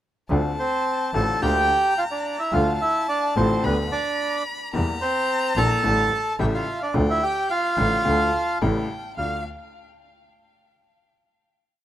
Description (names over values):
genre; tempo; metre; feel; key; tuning
tango; 108 BPM; 4/4; rubato; D minor; A4 = 436 Hz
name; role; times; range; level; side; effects
warm violin; second line; 0.3-9.4 s; E5 to B5; -30 LUFS; left 3 dB; tape echo
bright upright piano; accompaniment; 0.3-9.4 s; A1 to G4; -27 LUFS; left 3 dB; none
clear double bass; bass; 0.3-9.4 s; A1 to E2; -24 LUFS; right 1 dB; none
bandoneon; melody; 0.6-9.4 s; B3 to A5; -22 LUFS; right 2 dB; none
room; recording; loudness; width
light reverb, small room ambience; rough home demo mix; -20 LUFS; side -12 dB against mid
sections
0.3-9.2 A section; 9.2-11.4 final chord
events
none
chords
0.3 Dm7; 1.4 Bb/D; 2.5 Dm; 3.6 G/D; 4.7 Edim; 5.8 A7sus4; 6.4 A7; 6.9 Dm; 8.6 A7; 9.2 Dm